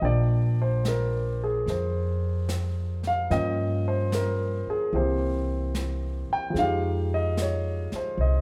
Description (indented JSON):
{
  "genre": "jazz ballad",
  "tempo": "74 BPM",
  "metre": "4/4",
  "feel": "swing 68% on 8ths",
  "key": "unclear",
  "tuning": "A4 = 444 Hz",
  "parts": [
    { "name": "warm grand piano", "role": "accompaniment", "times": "0.0-8.4 s", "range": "E3 to G5", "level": "-30 LUFS", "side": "equal", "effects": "none" },
    { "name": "upright bass", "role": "bass", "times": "0.0-8.4 s", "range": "Bb1 to G2", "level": "-29 LUFS", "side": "equal", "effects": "none" },
    { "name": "jazz brush drum kit", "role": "drums", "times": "0.0-8.4 s", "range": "brushed snare drum, hi-hat, snare drum", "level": "-40 LUFS", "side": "equal", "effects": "none" }
  ],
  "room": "moderate recital hall reverb, RT60 1.4 s",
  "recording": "recorded in a church or concert hall",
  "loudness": "-27 LUFS",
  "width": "mono",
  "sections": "0.0-8.4 A section",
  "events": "none",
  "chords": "0.0 Bb6; 3.3 Gm7b5; 4.9 C7; 6.6 Fm9"
}